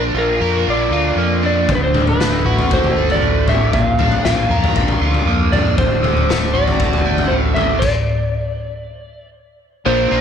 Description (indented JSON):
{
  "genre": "psychedelic rock",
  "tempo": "117 BPM",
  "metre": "4/4",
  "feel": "straight",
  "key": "unclear",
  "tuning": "A4 = 440 Hz",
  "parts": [
    { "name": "overdriven electric guitar", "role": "riff", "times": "0.0-10.2 s", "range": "D2 to Bb4", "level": "-18 LUFS", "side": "right 1 dB", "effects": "flanger" },
    { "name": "growling fingered electric bass", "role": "bass", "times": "0.0-10.2 s", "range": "D1 to F2", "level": "-21 LUFS", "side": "equal", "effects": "overdrive" },
    { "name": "electric slide guitar", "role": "melody", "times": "0.2-10.2 s", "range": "Bb4 to F5", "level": "-20 LUFS", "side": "right 1 dB", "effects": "tape echo" },
    { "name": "raw garage drum kit", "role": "drums", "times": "1.7-7.9 s", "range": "crash cymbal, kick drum, snare drum, toms", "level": "-18 LUFS", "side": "left 2 dB", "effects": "none" }
  ],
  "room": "small room reverb",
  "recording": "1960s-style stereo",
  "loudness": "-14 LUFS",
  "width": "side -8 dB against mid",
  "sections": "0.0-9.9 A section",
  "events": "stop 7.8-9.9",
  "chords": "0.0 Bb; 1.7 D; 3.7 Bb; 5.8 D; 7.8 N.C."
}